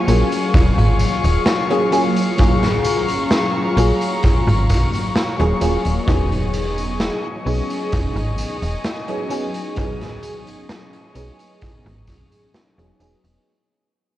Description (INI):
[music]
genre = vaporwave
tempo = 65 BPM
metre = 4/4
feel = straight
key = unclear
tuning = A4 = 440 Hz
[part]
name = FM electric piano with soft pad layer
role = accompaniment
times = 0.0-13.5 s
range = Gb3 to Ab4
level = -21 LUFS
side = left 1 dB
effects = phaser, lush chorus, analog delay
[part]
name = warm studio string section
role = sustained chords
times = 0.0-13.4 s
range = F#3 to C#6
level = -25 LUFS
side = left 2 dB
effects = none
[part]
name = slap-like FM bass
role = bass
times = 0.1-13.4 s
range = Eb1 to B1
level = -19 LUFS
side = equal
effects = none
[part]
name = raw garage drum kit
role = drums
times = 0.1-13.4 s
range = hi-hat, snare drum, tambourine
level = -25 LUFS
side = equal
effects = vintage 12-bit sampler grit
[part]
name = kick drum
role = drums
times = 0.5-12.3 s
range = none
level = -19 LUFS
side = equal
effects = vintage 12-bit sampler grit
[sound]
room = light reverb, small room ambience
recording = worn, warbling old tape, cassette tape, warbly pitch drift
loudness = -16 LUFS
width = side -14 dB against mid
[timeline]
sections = 0.0-13.5 A section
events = fade-out 3.6-13.5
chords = 0.0 Ebm11 (rootless); 6.1 Emaj13